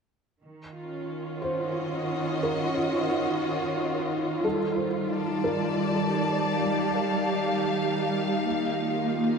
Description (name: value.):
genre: ambient.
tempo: 60 BPM.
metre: 4/4.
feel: straight.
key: unclear.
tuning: A4 = 441 Hz.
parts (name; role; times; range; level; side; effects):
warm studio string section; sustained chords; 0.4-9.4 s; Eb3 to A5; -26 LUFS; right 1 dB; none.
bowed-like drone; drone; 1.9-9.4 s; Eb3 to Eb4; -32 LUFS; equal; built-in reverb.
felt-muted upright piano; arpeggios; 1.4-8.5 s; A4 to Db5; -34 LUFS; equal; ping-pong delay.
room: wet cathedral reverb, RT60 5.2 s.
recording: dark, warm production.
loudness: -25 LUFS.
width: side -5 dB against mid.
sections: 0.4-9.4 A section.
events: none.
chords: 0.4 Ebm7; 4.4 Gm7; 8.5 Bb5.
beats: | 0.40 1.42 2.44 3.44 | 4.45 5.45 6.45 7.45 | 8.46.